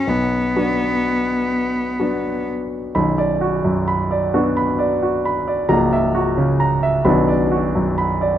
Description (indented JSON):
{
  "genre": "classical, romantic duo for cello and grand piano",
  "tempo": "43 BPM (dotted quarters)",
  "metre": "6/8",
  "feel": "rubato",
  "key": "B minor",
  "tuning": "A4 = 440 Hz",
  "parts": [
    { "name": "rich cello", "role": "melody", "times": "0.0-2.5 s", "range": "B3", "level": "-20 LUFS", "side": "left 2 dB", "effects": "none" },
    { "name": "clear concert grand piano", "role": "accompaniment", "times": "0.0-8.4 s", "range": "B0 to B5", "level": "-17 LUFS", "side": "equal", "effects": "none" }
  ],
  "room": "moderate scoring stage reverb, RT60 1.6 s",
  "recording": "close, detailed microphones",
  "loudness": "-16 LUFS",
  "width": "side -11 dB against mid",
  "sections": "0.0-3.0 A section; 3.0-8.4 B section",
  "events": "none",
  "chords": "0.1 Bm; 5.7 F#7/C#; 7.1 Bm"
}